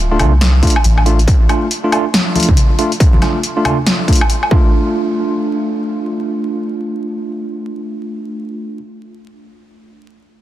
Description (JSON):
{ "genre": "deep dubstep", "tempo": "139 BPM", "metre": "4/4", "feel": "swing 61% on 16ths, half-time", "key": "D minor", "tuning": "A4 = 440 Hz", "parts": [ { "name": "soft dub sub bass", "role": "bass", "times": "0.0-1.3 s", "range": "D1 to C2", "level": "-11 LUFS", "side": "equal", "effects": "none" }, { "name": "tine electric piano", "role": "stabs", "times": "0.1-8.8 s", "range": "A3 to F4", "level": "-18 LUFS", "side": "right 1 dB", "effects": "medium stereo tremolo, low-pass filter, dub echo" }, { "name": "deep house drum kit", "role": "drums", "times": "0.2-4.5 s", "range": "hi-hat, snare drum, woodblock", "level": "-18 LUFS", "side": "equal", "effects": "overdrive" }, { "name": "congas", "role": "percussion", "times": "0.2-3.8 s", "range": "none", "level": "-22 LUFS", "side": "left 1 dB", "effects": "none" }, { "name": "electronic kick drum", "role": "drums", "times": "0.6-4.6 s", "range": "none", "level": "-12 LUFS", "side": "equal", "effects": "distortion" } ], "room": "light reverb", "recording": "dense, heavily limited modern master, vinyl crackle", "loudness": "-12 LUFS", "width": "side -14 dB against mid", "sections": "0.0-4.7 A section; 4.7-8.2 B section", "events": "none", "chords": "0.0 Dm", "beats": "0.41 0.84 | 1.27 1.71 2.14 2.57 | 3.00 3.43 3.87 4.30 | 4.73 5.16 5.59 6.02 | 6.45 6.89 7.32 7.75" }